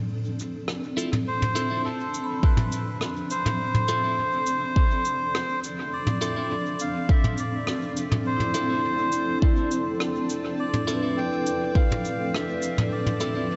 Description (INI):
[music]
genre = ambient dub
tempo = 103 BPM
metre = 4/4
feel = straight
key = D dorian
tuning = A4 = 440 Hz
[part]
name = granular cloud pad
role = sustained chords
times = 0.0-13.6 s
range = F3 to D5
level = -32 LUFS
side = equal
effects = built-in reverb
[part]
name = jazz brush drum kit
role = drums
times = 0.4-13.3 s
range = cabasa, rim click, toms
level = -32 LUFS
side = equal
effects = dub echo
[part]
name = clean electric guitar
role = stabs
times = 1.0-13.5 s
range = C4 to A4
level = -38 LUFS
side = equal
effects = phaser, dub echo
[part]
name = melodica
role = melody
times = 1.3-13.6 s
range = A4 to G5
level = -31 LUFS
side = equal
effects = dub echo
[part]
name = vibraphone with soft mallets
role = arpeggios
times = 2.2-13.6 s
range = E4 to B5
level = -35 LUFS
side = equal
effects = dub echo
[part]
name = electronic kick drum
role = drums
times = 2.4-11.9 s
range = none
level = -22 LUFS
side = equal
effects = none
[sound]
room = wet huge ambient reverb, RT60 8.6 s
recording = dreamy mix soaked in reverb, nothing above 7.9 kHz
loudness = -25 LUFS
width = mono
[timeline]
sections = 0.0-1.3 A section; 1.3-13.6 B section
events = break 0.0-1.3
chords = 0.0 Dm7